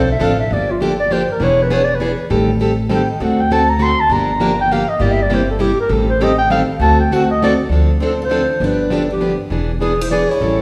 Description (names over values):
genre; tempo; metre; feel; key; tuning
acoustic string swing (jazz manouche); 200 BPM; 3/4; swing 59% on 8ths; G minor; A4 = 439 Hz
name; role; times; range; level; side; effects
breathy clarinet; melody; 0.0-10.6 s; F4 to C6; -20 LUFS; equal; none
upright bass; bass; 0.0-10.6 s; E1 to D2; -21 LUFS; equal; none
picked plugged-in steel-string acoustic guitar; accompaniment; 0.2-10.6 s; C3 to A4; -20 LUFS; equal; none
picked plugged-in steel-string acoustic guitar; second line; 8.0-10.6 s; B3 to G#4; -25 LUFS; equal; none
room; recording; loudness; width
wet recital hall reverb, RT60 1.8 s; recorded in a church or concert hall; -16 LUFS; mono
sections
0.5-7.7 A section; 7.7-10.6 B section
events
clarinet solo 0.0-7.7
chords
0.0 Dm7; 0.5 Gm7; 1.4 E7; 2.3 Am7b5; 3.2 D7; 4.1 Gm7; 5.0 C7/G; 5.9 Am7b5; 6.8 D7; 7.7 Dm7; 8.6 G7; 9.5 E7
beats
0.21 | 0.51 0.81 1.11 | 1.41 1.71 2.01 | 2.31 2.61 2.91 | 3.21 3.51 3.81 | 4.11 4.41 4.71 | 5.01 5.31 5.61 | 5.91 6.21 6.51 | 6.81 7.11 7.41 | 7.71 8.01 8.31 | 8.62 8.91 9.22 | 9.52 9.82 10.12 | 10.42